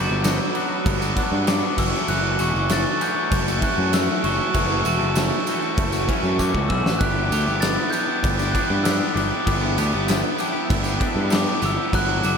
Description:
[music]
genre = indie rock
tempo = 98 BPM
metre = 4/4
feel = straight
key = unclear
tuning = A4 = 441 Hz
[part]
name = glockenspiel with soft plastic mallets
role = melody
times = 0.0-12.4 s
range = C#6 to A6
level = -26 LUFS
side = equal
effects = diffuse ambient delay
[part]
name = string machine, violas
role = sustained chords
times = 0.0-12.4 s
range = E4 to D6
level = -31 LUFS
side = equal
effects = phaser, ensemble chorus
[part]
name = twangy electric guitar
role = riff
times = 0.0-12.4 s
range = E3 to G4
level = -28 LUFS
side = left 9 dB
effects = none
[part]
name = twangy electric guitar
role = riff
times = 0.0-12.4 s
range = E3 to G4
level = -30 LUFS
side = right 9 dB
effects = lush chorus, diffuse ambient delay
[part]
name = fuzz picked electric bass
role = bass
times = 0.0-12.4 s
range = E1 to G2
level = -24 LUFS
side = equal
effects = overdrive
[part]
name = tambourine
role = percussion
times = 0.1-12.4 s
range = none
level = -38 LUFS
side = right 8 dB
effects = none
[part]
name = big rock drum kit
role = drums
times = 0.2-12.4 s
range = crash cymbal, kick drum, snare drum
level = -24 LUFS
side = equal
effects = none
[sound]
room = moderate cathedral reverb, RT60 6.0 s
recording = dreamy mix soaked in reverb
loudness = -19 LUFS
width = side -6 dB against mid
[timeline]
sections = 0.0-12.4 A section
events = drum fill 6.4-7.0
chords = 0.0 Gmaj7; 1.8 F#m7; 7.0 Em7/G

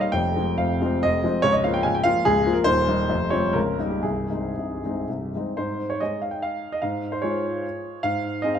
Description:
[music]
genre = classical, romantic triple-time dance for piano with dotted rhythms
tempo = 110-156 BPM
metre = 3/4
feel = rubato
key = Ab major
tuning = A4 = 440 Hz
[part]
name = warm grand piano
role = solo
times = 0.0-8.6 s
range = C1 to Ab5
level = -21 LUFS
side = equal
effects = none
[sound]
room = wet recital hall reverb, RT60 1.8 s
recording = none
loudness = -21 LUFS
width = side -8 dB against mid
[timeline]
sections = 0.0-5.6 A section; 5.6-8.6 B section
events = none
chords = 0.2 Fm; 1.4 Bbm/Db; 2.7 Eb; 3.1 Fm; 3.6 Eb7/Db; 4.0 Ab/C; 5.6 Ab5; 6.8 Db/Ab; 8.0 Ab

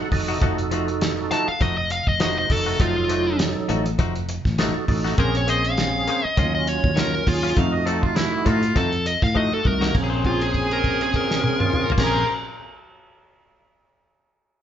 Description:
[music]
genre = straight-eighth soul blues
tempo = 101 BPM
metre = 4/4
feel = swing 56% on 16ths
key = Bb minor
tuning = A4 = 441 Hz
[part]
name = percussive tonewheel organ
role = accompaniment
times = 0.0-12.2 s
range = Gb3 to Eb5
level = -27 LUFS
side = right 3 dB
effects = slow rotary speaker, overdrive, chorus vibrato
[part]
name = direct-recorded clean electric guitar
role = stabs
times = 0.0-12.3 s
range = Eb3 to C5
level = -30 LUFS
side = left 5 dB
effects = none
[part]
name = fingered electric bass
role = bass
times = 0.0-12.2 s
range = F1 to A2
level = -26 LUFS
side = equal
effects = none
[part]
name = cloth-damped thuddy drum kit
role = drums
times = 0.1-12.1 s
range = crash cymbal, hi-hat, kick drum, snare drum, toms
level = -24 LUFS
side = equal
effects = none
[part]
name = dark smooth lead guitar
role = melody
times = 1.3-12.2 s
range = F4 to A5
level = -24 LUFS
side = left 1 dB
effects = overdrive
[part]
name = warm harmonica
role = second line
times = 7.6-12.3 s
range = E4 to F5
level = -26 LUFS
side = right 1 dB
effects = overdrive
[sound]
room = moderate large studio reverb, RT60 1.1 s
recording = band playing live in one room, nothing above 7.6 kHz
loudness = -19 LUFS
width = side -10 dB against mid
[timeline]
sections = 0.0-9.9 A section; 9.9-12.3 B section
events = tonewheel organ fill 0.0-0.4; drum fill 9.4-9.9; held note 9.9-12.0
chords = 0.0 F7b9; 5.2 Bbm9; 6.4 Ebm9; 7.6 F7b9; 9.9 Bbm9

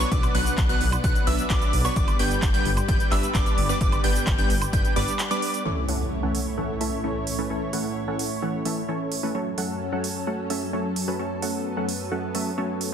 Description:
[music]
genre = EDM, festival progressive house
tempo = 130 BPM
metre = 4/4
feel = straight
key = unclear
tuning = A4 = 440 Hz
[part]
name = lush unison pad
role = sustained chords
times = 0.0-12.9 s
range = F#2 to F#5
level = -32 LUFS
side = equal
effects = chorus, sidechain pumping
[part]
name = plucky unison lead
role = arpeggios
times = 0.0-5.6 s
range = C#6 to G6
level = -28 LUFS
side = left 1 dB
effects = sidechain pumping, ping-pong delay
[part]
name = supersaw stab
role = riff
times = 0.0-12.9 s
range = E3 to G5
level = -28 LUFS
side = equal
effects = sidechain pumping, low-pass filter, ping-pong delay
[part]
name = detuned saw bass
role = bass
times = 0.0-5.0 s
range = G1 to B1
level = -27 LUFS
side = equal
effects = sidechain pumping
[part]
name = big-room dance drum kit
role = drums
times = 0.0-12.9 s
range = cabasa, handclaps, hi-hat, woodblock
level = -31 LUFS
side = right 4 dB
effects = overdrive
[part]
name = electronic kick drum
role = drums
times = 0.1-4.8 s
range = none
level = -24 LUFS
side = equal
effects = overdrive
[part]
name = impact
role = sound effects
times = 5.7-7.5 s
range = none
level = -31 LUFS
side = equal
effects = none
[sound]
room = light reverb, digital ambience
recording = dense, heavily limited modern master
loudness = -22 LUFS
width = side -8 dB against mid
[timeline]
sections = 0.0-5.7 A section; 5.7-12.9 B section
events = drop 0.0-5.7; break 5.2-5.7; impact 5.7-7.5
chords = 0.0 Bm; 2.0 G; 5.7 A; 9.3 F#m

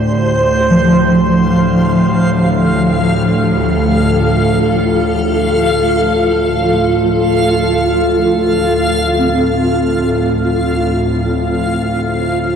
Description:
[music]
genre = ambient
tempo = free time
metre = none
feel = none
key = D minor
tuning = A4 = 438 Hz
[part]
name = granular cloud pad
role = sustained chords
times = 0.0-12.6 s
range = D4 to D5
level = -16 LUFS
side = equal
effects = built-in reverb
[part]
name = bowed-like drone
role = drone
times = 0.0-12.6 s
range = D2 to A2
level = -16 LUFS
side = equal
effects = built-in reverb
[part]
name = backwards swelling texture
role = texture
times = 0.0-12.6 s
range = C5 to F5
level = -18 LUFS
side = equal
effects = built-in reverb
[part]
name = gamelan-type bronze metallophone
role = arpeggios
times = 0.7-12.6 s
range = F3 to C4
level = -17 LUFS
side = equal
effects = ping-pong delay
[sound]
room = wet cathedral reverb, RT60 5.4 s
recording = dark, warm production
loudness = -11 LUFS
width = side -7 dB against mid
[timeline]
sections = 0.0-12.6 A section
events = fade-out 7.7-12.6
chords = 0.0 Dm7

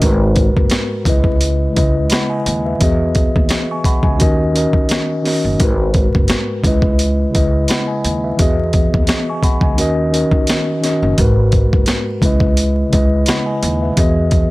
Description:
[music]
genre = hip hop, boom-bap hip-hop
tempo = 86 BPM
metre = 4/4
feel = swing 54% on 16ths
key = unclear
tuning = A4 = 445 Hz
[part]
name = mellow tine electric piano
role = accompaniment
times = 0.0-14.5 s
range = G#2 to C#6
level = -17 LUFS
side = left 1 dB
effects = medium stereo tremolo
[part]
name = upright bass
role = bass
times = 0.0-14.4 s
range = F#1 to E2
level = -18 LUFS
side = equal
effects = none
[part]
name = boom bap sampler-style drum kit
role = drums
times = 0.0-14.5 s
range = hi-hat, kick drum, snare drum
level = -16 LUFS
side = equal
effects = overdrive
[sound]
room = little or no reverb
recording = vinyl crackle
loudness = -13 LUFS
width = side -20 dB against mid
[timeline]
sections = 0.0-14.5 A section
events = none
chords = 0.0 G#m7; 1.1 C#m9; 4.2 D#m7; 5.6 G#m7; 6.6 C#m9; 9.8 D#m7; 11.2 G#m7; 12.2 C#m9; 14.0 Emaj7

